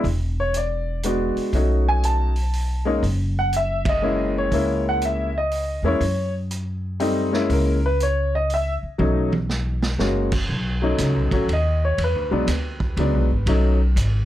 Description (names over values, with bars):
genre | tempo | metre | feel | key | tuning
jazz piano trio | 121 BPM | 3/4 | swing 66% on 8ths | B major | A4 = 441 Hz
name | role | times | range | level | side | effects
clear upright piano | melody | 0.0-13.8 s | F#3 to A5 | -22 LUFS | left 1 dB | none
upright bass | bass | 0.0-14.2 s | E1 to F#2 | -22 LUFS | equal | none
vintage drum kit | drums | 0.0-14.1 s | crash cymbal, hi-hat, kick drum, ride cymbal, snare drum, toms | -29 LUFS | right 2 dB | none
room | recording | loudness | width
little or no reverb | dark, warm production | -19 LUFS | side -13 dB against mid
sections
0.0-10.5 A section; 10.5-14.2 B section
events
band accent 3.8; drum fill 9.0-10.0; upright piano solo 10.5-14.2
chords
0.0 E7; 1.5 B7; 3.0 F#7; 9.0 B7; 10.0 F#; 10.5 B7; 12.0 E7 (rootless); 13.5 B7